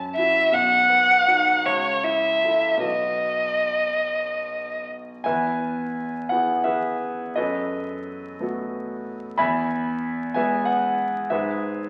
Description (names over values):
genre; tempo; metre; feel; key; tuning
classical, romantic duo for violin and grand piano; 48-64 BPM (dotted quarters); 6/8; rubato; E major; A4 = 438 Hz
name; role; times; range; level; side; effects
clear concert grand piano; accompaniment; 0.0-11.9 s; B1 to B5; -27 LUFS; equal; none
rich violin; melody; 0.2-4.8 s; C#5 to F#5; -21 LUFS; equal; none
room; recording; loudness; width
wet recital hall reverb, RT60 1.5 s; very old 78 rpm record, vinyl crackle; -23 LUFS; mono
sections
0.0-5.3 A section; 5.3-11.9 B section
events
none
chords
0.0 F#5; 0.5 B; 1.6 A/C#; 2.8 B; 5.3 E; 7.4 B7/F#; 9.4 E; 11.3 E/G#